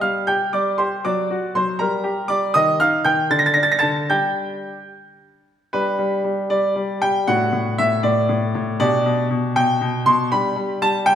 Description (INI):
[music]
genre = classical-period piano sonatina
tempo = 78 BPM (dotted quarters)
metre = 6/8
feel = rubato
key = G minor, G major from 5.7 s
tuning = A4 = 440 Hz
[part]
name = bright baby grand piano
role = solo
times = 0.0-11.2 s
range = A2 to Bb6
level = -17 LUFS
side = equal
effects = none
[sound]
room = wet recital hall reverb, RT60 1.6 s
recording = minimal, uncompressed stereo recording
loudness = -17 LUFS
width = side -9 dB against mid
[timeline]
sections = 0.0-5.7 A section; 5.7-11.2 B section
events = none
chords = 0.0 G5; 1.0 D7/F#; 1.8 Gm; 2.6 Eb; 3.3 D5; 4.1 G5; 7.3 D/A; 8.8 G/B; 10.3 G